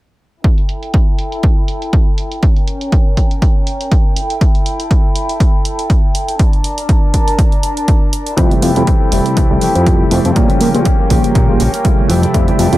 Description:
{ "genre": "filtered disco house", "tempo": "121 BPM", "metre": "4/4", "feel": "swing 55% on 16ths", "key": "unclear", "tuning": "A4 = 441 Hz", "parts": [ { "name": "clear studio violin section", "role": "sustained chords", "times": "0.4-12.8 s", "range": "Db4 to A5", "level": "-22 LUFS", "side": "equal", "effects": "sidechain pumping, low-pass filter" }, { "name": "electronic hi-hat", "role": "drums", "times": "0.4-12.8 s", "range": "none", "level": "-25 LUFS", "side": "right 3 dB", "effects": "sidechain pumping on hats, low-pass filter on hats" }, { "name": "electronic kick drum", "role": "drums", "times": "0.4-12.5 s", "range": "none", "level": "-12 LUFS", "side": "equal", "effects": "none" }, { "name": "tine electric piano", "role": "accompaniment", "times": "8.4-12.8 s", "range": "C3 to F4", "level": "-16 LUFS", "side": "equal", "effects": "medium stereo tremolo, phaser, sidechain pumping, low-pass filter, dub echo" }, { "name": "direct-recorded clean electric guitar", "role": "riff", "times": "8.4-12.8 s", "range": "E3 to G4", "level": "-19 LUFS", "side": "left 2 dB", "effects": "sidechain pumping, low-pass filter, dub echo" }, { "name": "fat analog bass", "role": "bass", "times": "8.4-12.8 s", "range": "F1 to Bb2", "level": "-14 LUFS", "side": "equal", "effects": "sidechain pumping, low-pass filter" }, { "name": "tambourine", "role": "percussion", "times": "8.4-12.8 s", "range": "none", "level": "barely audible", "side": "none", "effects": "none" } ], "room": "little or no reverb", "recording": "echo-heavy mix", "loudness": "-11 LUFS", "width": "side -16 dB against mid", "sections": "0.4-12.8 A section", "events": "filter sweep 0.4-12.8", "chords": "0.4 Emadd11; 2.4 Bbm6; 4.2 Emadd11; 6.4 Bbmaj7; 8.4 Fmaj9; 10.4 Bbm6; 12.1 Fmaj9" }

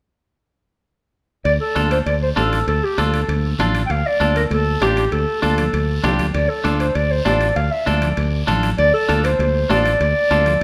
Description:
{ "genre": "latin, cumbia", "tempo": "196 BPM", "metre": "4/4", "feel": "straight", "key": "D minor", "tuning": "A4 = 440 Hz", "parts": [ { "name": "mellow clarinet", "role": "melody", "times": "1.4-10.6 s", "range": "G4 to G5", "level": "-22 LUFS", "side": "equal", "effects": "none" }, { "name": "guiro", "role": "percussion", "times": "1.4-10.6 s", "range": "none", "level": "-38 LUFS", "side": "equal", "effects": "none" }, { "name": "modern bright fingered electric bass", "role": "bass", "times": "1.5-10.6 s", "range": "A1 to D2", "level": "-23 LUFS", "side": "equal", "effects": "none" }, { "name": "timbales", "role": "percussion", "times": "1.5-10.6 s", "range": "none", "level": "-33 LUFS", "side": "equal", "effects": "none" }, { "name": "clean electric guitar", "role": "accompaniment", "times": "1.8-10.5 s", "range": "D4 to A4", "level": "-26 LUFS", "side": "equal", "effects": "none" }, { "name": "congas", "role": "percussion", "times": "1.8-10.6 s", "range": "none", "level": "-29 LUFS", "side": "equal", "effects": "none" } ], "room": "moderate large studio reverb, RT60 1.3 s", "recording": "none", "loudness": "-18 LUFS", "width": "mono", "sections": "1.5-10.6 A section", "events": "none", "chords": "1.5 Dm" }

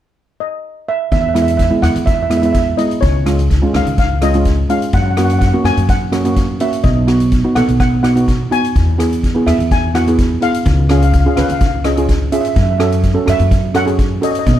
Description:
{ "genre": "calypso", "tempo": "126 BPM", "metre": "4/4", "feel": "straight", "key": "E major", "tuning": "A4 = 441 Hz", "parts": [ { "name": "steel pan", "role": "melody", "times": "0.4-14.6 s", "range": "C#5 to G#5", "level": "-19 LUFS", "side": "equal", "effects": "none" }, { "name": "upright bass", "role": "bass", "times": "1.1-14.6 s", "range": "B1 to F#2", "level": "-16 LUFS", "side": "equal", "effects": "none" }, { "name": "soft-mallet drum kit", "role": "drums", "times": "1.1-14.6 s", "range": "hi-hat, kick drum, rim click", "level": "-18 LUFS", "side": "equal", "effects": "none" }, { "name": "steel pan", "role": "accompaniment", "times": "1.3-14.5 s", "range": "G#3 to B4", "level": "-17 LUFS", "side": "right 2 dB", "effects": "none" } ], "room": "moderate small room reverb, RT60 0.5 s", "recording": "dark, warm production", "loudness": "-12 LUFS", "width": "side -12 dB against mid", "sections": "0.0-1.1 A section; 1.1-14.6 B section", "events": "none", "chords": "0.0 N.C.; 1.1 E; 3.0 C#; 4.9 F#; 6.8 B7; 8.8 E; 10.7 C#7; 12.6 F#m7" }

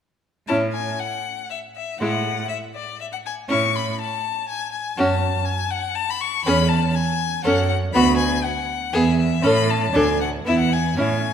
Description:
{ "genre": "quick classical-period movement for string quartet", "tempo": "121 BPM", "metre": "3/4", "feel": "rubato", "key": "A major", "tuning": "A4 = 443 Hz", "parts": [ { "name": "rich violin", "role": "melody", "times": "0.5-11.3 s", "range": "D5 to C#6", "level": "-24 LUFS", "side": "left 9 dB", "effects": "none" }, { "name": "rich violin", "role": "second line", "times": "0.5-11.2 s", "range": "E4 to A4", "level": "-26 LUFS", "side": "left 2 dB", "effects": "none" }, { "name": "rich viola", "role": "accompaniment", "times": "0.5-11.2 s", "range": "G#3 to D4", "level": "-22 LUFS", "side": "right 2 dB", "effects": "none" }, { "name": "clear cello", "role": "bass", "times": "0.5-11.3 s", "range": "D2 to A2", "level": "-24 LUFS", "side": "right 3 dB", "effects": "none" } ], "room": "wet scoring stage reverb, RT60 1.9 s", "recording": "none", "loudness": "-19 LUFS", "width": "side -8 dB against mid", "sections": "0.5-11.3 A section", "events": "none", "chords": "0.5 A; 2.0 E/A; 3.5 A; 5.0 F#m; 6.4 C#m/E; 7.4 F#m; 7.9 Bm/D; 8.9 E; 9.4 A; 9.9 D5; 10.4 E" }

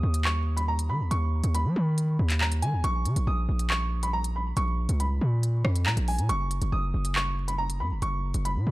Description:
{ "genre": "hip hop, drill", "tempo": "139 BPM", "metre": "4/4", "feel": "half-time", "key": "Eb minor", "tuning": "A4 = 440 Hz", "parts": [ { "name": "dark baby grand piano", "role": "melody", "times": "0.0-8.7 s", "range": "Ab5 to Eb6", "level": "-32 LUFS", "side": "right 1 dB", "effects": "tape echo" }, { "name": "hard-hitting 808-style bass", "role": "bass", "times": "0.0-8.7 s", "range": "Gb1 to Gb3", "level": "-25 LUFS", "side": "equal", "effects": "none" }, { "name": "drill drum kit", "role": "drums", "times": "0.1-8.6 s", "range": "handclaps, hi-hat, rim click", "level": "-31 LUFS", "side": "equal", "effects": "none" } ], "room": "digital ambience", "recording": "dark, warm production, vinyl crackle", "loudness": "-24 LUFS", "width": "side -18 dB against mid", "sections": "0.0-8.7 A section", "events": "none", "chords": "0.0 Eb7(no3); 2.8 N.C.; 6.3 Gb5" }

